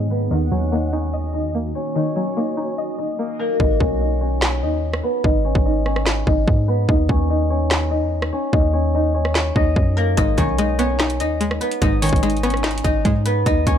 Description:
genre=hip hop, trap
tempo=146 BPM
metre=4/4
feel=half-time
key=G# minor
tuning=A4 = 438 Hz
part: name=guzheng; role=melody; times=0.0-13.8 s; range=A#3 to D#5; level=-22 LUFS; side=left 1 dB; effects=low-pass filter
part: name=string-like resonator pluck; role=accompaniment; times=0.0-3.6, 10.2-13.5 s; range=G#2 to D#5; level=-24 LUFS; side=left 2 dB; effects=chorus, low-pass filter
part: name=granular cloud pad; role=sustained chords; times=0.0-3.6 s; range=D#3 to G#4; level=-31 LUFS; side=right 2 dB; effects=built-in reverb
part: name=warm 808-style bass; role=bass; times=0.0-13.8 s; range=G#1 to G#2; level=-21 LUFS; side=equal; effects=none
part: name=trap drum kit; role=drums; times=0.1-13.8 s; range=handclaps, hi-hat, kick drum, rim click, snare drum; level=-20 LUFS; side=equal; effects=vintage 12-bit sampler grit
part: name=clear studio violin section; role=second line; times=0.3-3.2 s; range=C#5 to F#5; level=-35 LUFS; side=right 1 dB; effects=digital delay
room=little or no reverb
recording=low-pass filter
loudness=-17 LUFS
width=side -9 dB against mid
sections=0.0-3.6 A section; 3.6-13.8 B section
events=filter sweep 0.0-3.6, 3.6-10.2; hi-hats muted 3.6-10.2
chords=0.3 D#m; 3.6 G#m; 6.9 D#m; 10.2 G#m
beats=| 0.31 0.72 1.13 1.54 | 1.96 2.37 2.78 3.19 | 3.60 4.01 4.42 4.83 | 5.24 5.65 6.07 6.48 | 6.89 7.30 7.71 8.12 | 8.53 8.94 9.35 9.76 | 10.17 10.59 11.00 11.41 | 11.82 12.23 12.64 13.05 | 13.46

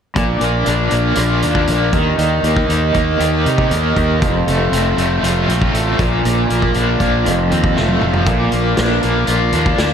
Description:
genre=psychedelic rock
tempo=118 BPM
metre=4/4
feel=straight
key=unclear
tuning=A4 = 441 Hz
part: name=combo organ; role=sustained chords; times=0.2-9.9 s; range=D4 to F5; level=-22 LUFS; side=right 2 dB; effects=spring reverb
part: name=cranked stack guitar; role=riff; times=0.2-9.9 s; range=F2 to G4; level=-17 LUFS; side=left 1 dB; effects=overdrive, tremolo
part: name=fuzz fingered electric bass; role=bass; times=0.2-9.9 s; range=F1 to C3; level=-18 LUFS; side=equal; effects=overdrive
part: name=vintage drum kit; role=drums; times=0.2-9.9 s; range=hi-hat, kick drum, snare drum, toms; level=-21 LUFS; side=equal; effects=none
room=moderate lush hall reverb, RT60 1.9 s, studio reverb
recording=dreamy mix soaked in reverb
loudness=-13 LUFS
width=side -8 dB against mid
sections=0.2-9.9 A section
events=drum fill 7.8-8.3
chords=0.2 Bb; 1.9 Eb; 4.2 F; 6.0 Bb; 7.3 F; 8.3 Bb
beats=| 0.17 0.67 1.18 1.69 | 2.19 2.70 3.21 3.72 | 4.22 4.73 5.24 5.75 | 6.25 6.76 7.27 7.77 | 8.28 8.79 9.29 9.80

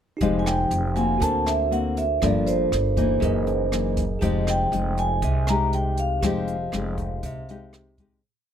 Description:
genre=bossa nova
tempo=120 BPM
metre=4/4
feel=straight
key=F minor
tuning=A4 = 439 Hz
part: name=vibraphone with medium mallets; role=melody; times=0.2-7.7 s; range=C5 to Bb5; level=-26 LUFS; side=right 1 dB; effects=none
part: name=bell-like tine electric piano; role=accompaniment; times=0.2-8.3 s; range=Eb4 to Eb5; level=-32 LUFS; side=right 3 dB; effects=none
part: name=nylon-string guitar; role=accompaniment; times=0.2-8.2 s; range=Gb2 to G4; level=-26 LUFS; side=left 4 dB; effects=none
part: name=upright bass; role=bass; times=0.2-8.2 s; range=F1 to D2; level=-26 LUFS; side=right 1 dB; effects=none
part: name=jazz brush drum kit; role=drums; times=0.2-8.1 s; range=hi-hat, kick drum, rim click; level=-31 LUFS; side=right 1 dB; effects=none
room=little or no reverb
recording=close, detailed microphones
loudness=-21 LUFS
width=side -9 dB against mid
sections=0.2-8.2 A section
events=fade-out 6.2-8.2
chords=0.2 Fm9; 1.2 D7b13; 2.2 Gm7; 3.2 Gb13; 4.2 Fm9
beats=| 0.21 0.71 1.21 1.71 | 2.21 2.71 3.22 3.72 | 4.22 4.72 5.22 5.72 | 6.23 6.73 7.23 7.73

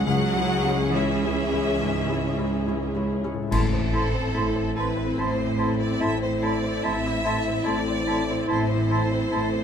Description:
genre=cinematic, emotional film score for orchestra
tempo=72 BPM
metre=4/4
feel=rubato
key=A dorian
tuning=A4 = 437 Hz
part: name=rich symphonic violin section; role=melody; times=0.0-9.6 s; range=A4 to F#5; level=-35 LUFS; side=left 3 dB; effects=none
part: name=rich symphonic violin section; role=second line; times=0.0-9.6 s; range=A4 to F#5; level=-31 LUFS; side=left 1 dB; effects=none
part: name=felt-muted upright piano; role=accompaniment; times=0.0-9.6 s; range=A1 to C#5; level=-32 LUFS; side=left 3 dB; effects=none
part: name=rich symphonic viola section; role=accompaniment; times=0.0-9.6 s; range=C4 to G#4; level=-31 LUFS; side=right 2 dB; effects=none
part: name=concert harp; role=arpeggios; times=0.0-7.4 s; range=A2 to C#5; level=-33 LUFS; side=left 10 dB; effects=none
part: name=clear symphonic cello section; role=bass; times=0.0-9.6 s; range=A2 to F#3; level=-30 LUFS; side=right 2 dB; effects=none
part: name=rich symphonic double bass section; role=bass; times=0.0-9.6 s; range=A1 to C#2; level=-29 LUFS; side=right 3 dB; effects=none
part: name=clear clarinet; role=second line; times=3.5-9.5 s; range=E4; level=-35 LUFS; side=left 4 dB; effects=none
part: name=mellow oboe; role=second line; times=3.5-9.5 s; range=A5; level=-34 LUFS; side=right 1 dB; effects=none
part: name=mellow small flute group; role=second line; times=3.5-9.4 s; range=C6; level=-33 LUFS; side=right 3 dB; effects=none
part: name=mellow French horn section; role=sustained chords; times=3.5-9.6 s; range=C4 to E4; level=-29 LUFS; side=left 3 dB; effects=none
part: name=clash cymbals and concert bass drum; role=percussion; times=3.5-5.1 s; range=none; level=-30 LUFS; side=equal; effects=none
part: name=timpani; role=percussion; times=3.5-4.7 s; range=A2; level=-31 LUFS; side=left 1 dB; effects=none
room=moderate scoring stage reverb, RT60 1.6 s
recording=close, detailed microphones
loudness=-22 LUFS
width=side -8 dB against mid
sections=0.0-3.5 A section; 3.5-9.6 B section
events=band accent 3.5-4.3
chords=0.0 C#m; 3.5 Am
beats=| 0.06 0.93 1.79 2.65 | 3.50 4.34 5.17 6.00 | 6.83 7.66 8.48 9.31

